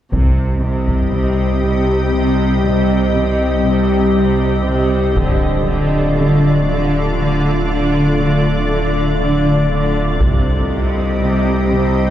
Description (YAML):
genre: cinematic, hybrid orchestral and electronic film score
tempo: 119 BPM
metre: 5/4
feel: straight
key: C dorian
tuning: A4 = 438 Hz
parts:
  - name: organ-like drone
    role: sustained chords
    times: 0.8-12.1 s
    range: G3 to Eb5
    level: -17 LUFS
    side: left 1 dB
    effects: ensemble chorus, built-in reverb
  - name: clear studio cello section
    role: bass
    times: 0.1-12.1 s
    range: C3 to D3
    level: -18 LUFS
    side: right 1 dB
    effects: none
  - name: saturated sub bass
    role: bass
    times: 0.1-12.1 s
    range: D1 to C2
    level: -19 LUFS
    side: equal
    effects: none
  - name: taiko ensemble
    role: drums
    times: 0.1-1.1, 5.2-6.1, 10.2-11.2 s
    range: none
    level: -19 LUFS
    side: equal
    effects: none
room: wet concert hall reverb, RT60 1.8 s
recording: heard from further back in the room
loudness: -13 LUFS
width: side -11 dB against mid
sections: 0.1-12.1 A section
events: none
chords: 0.1 Cm; 5.2 Dm; 10.2 Cm